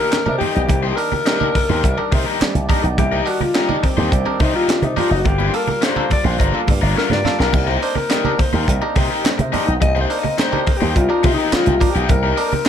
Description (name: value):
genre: funk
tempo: 105 BPM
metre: 4/4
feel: straight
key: C minor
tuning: A4 = 441 Hz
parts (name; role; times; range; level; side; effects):
- breathy alto saxophone; melody; 0.0-12.7 s; C4 to Eb5; -21 LUFS; left 3 dB; plate reverb
- raw garage guitar; accompaniment; 0.0-12.7 s; D4 to C5; -23 LUFS; left 6 dB; overdrive
- overdriven tonewheel organ; sustained chords; 0.0-12.7 s; Eb3 to F4; -29 LUFS; right 1 dB; slow rotary speaker
- tight funk drum kit; drums; 0.1-12.7 s; crash cymbal, handclaps, hi-hat, kick drum, snare drum; -20 LUFS; equal; none
- congas; percussion; 0.1-12.7 s; none; -25 LUFS; right 7 dB; none
- overdriven clav; stabs; 0.3-12.7 s; G2 to Bb4; -26 LUFS; right 2 dB; none
- slap bass with an envelope filter; bass; 0.3-12.6 s; F#1 to C3; -20 LUFS; equal; none
room: moderate small room ambience, RT60 0.5 s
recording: none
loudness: -15 LUFS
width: side -9 dB against mid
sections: 0.0-12.7 A section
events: alto saxophone solo 0.0-12.7; drum fill 7.0-7.5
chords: 0.0 Cm7; 5.3 Gm7; 7.5 Cm7